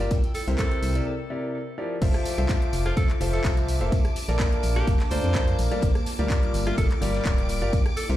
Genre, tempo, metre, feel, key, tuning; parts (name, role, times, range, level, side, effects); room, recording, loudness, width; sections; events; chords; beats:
piano house; 126 BPM; 4/4; straight; F major; A4 = 439 Hz
string machine, violins; sustained chords; 0.0-8.2 s; D6 to E6; -40 LUFS; equal; ensemble chorus, sidechain pumping
clear concert grand piano; riff; 0.0-8.2 s; C3 to F5; -29 LUFS; left 1 dB; sidechain pumping, ping-pong delay
organ-like FM bass; bass; 0.0-8.2 s; D1 to F2; -25 LUFS; equal; sidechain pumping
house drum kit; drums; 0.0-8.2 s; crash cymbal, handclaps, hi-hat, rim click; -36 LUFS; left 1 dB; overdrive
tambourine; percussion; 0.0-8.2 s; -43 LUFS; right 3 dB
airy breathy pad; texture; 0.0-8.2 s; Bb3 to A5; -36 LUFS; equal; chorus, sidechain pumping
electronic kick drum; drums; 0.1-7.8 s; -23 LUFS; equal; overdrive
loose indie drum kit; drums; 0.1-8.2 s; hi-hat, snare drum; -45 LUFS; right 2 dB
edgy alto saxophone; melody; 0.3-8.1 s; F4 to C5; -35 LUFS; right 1 dB; ping-pong delay
little or no reverb; played on a big sound system in a bare room, large studio reverb; -22 LUFS; side -13 dB against mid
0.0-2.0 A section; 2.0-8.2 B section
break 1.1-2.0; drop 2.0-8.2
0.1 C7; 2.0 Fmaj7; 3.9 Bbmaj7; 5.8 Gm7
| 0.11 0.59 1.06 1.54 | 2.02 2.49 2.97 3.45 | 3.92 4.40 4.87 5.35 | 5.83 6.30 6.78 7.25 | 7.73